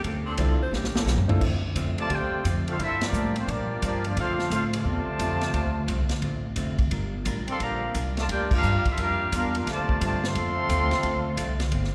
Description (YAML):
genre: jazz, big band swing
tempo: 175 BPM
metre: 4/4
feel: swing 64% on 8ths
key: D minor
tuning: A4 = 440 Hz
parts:
  - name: vintage hollow-body jazz guitar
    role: accompaniment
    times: 0.0-11.9 s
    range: G2 to Bb4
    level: -36 LUFS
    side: equal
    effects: none
  - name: upright bass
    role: bass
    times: 0.0-11.9 s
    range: F1 to Bb2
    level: -31 LUFS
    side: equal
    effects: none
  - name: vintage drum kit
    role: drums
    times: 0.0-11.9 s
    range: crash cymbal, hi-hat, kick drum, ride cymbal, snare drum, toms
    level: -32 LUFS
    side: equal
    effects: none
  - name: clear baby grand piano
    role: accompaniment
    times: 0.4-1.4 s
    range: Bb3 to A4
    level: -36 LUFS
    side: equal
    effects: none
  - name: breathy alto saxophone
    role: melody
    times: 0.6-1.3 s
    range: G4 to C5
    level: -38 LUFS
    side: equal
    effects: none
  - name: mellow trumpet section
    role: melody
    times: 2.0-11.6 s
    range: A3 to C6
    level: -31 LUFS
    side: equal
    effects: none
  - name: clear trombone section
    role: second line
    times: 2.0-11.6 s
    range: C3 to G4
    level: -35 LUFS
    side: equal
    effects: none
room: wet concert hall reverb, RT60 2.1 s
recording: recorded in a church or concert hall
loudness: -26 LUFS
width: mono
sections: 0.0-1.4 A section; 1.4-11.9 B section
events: alto saxophone solo 0.0-1.4; drum fill 0.7-1.4; band accent 3.0, 8.5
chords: 0.0 Dm7; 0.7 A7b9; 1.4 Dm7; 2.8 Gm7; 4.2 Dm7; 6.9 Gm7; 9.7 Dm7